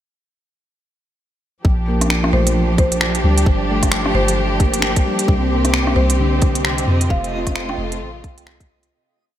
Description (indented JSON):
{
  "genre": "future garage",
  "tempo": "132 BPM",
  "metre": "4/4",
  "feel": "swing 60% on 16ths",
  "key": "unclear",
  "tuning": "A4 = 438 Hz",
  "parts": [
    { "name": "rich studio string section", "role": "sustained chords", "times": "1.6-8.9 s", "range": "C3 to G4", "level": "-22 LUFS", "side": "equal", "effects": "sidechain pumping" },
    { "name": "soft 808-style bass", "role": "bass", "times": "1.6-8.9 s", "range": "F1 to F2", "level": "-20 LUFS", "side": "equal", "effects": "tube saturation, sidechain pumping" },
    { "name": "electronic kick drum", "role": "drums", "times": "1.6-8.7 s", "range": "none", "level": "-16 LUFS", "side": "equal", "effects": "none" },
    { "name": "felt-muted upright piano", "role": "accompaniment", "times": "1.9-8.9 s", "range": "D3 to F4", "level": "-23 LUFS", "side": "equal", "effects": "sidechain pumping, tape echo" },
    { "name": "organic electronic drum kit", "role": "drums", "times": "2.0-8.9 s", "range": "finger snaps, hi-hat, rim click", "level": "-22 LUFS", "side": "equal", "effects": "none" },
    { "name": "marimba with hard mallets", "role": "melody", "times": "2.3-8.3 s", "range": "C5 to G5", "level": "-26 LUFS", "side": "left 1 dB", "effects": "vintage 12-bit sampler grit, tape echo" },
    { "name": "backwards swelling texture", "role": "texture", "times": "5.3-8.9 s", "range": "Eb5", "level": "-36 LUFS", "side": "equal", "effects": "built-in reverb" }
  ],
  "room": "moderate huge ambient reverb, RT60 8.6 s",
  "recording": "dreamy mix soaked in reverb",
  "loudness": "-15 LUFS",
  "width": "side -11 dB against mid",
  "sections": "1.6-8.9 groove",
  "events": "fade-out 6.5-8.9",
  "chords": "1.6 Bb6; 3.5 Gm7; 5.3 Cm7; 7.1 F7"
}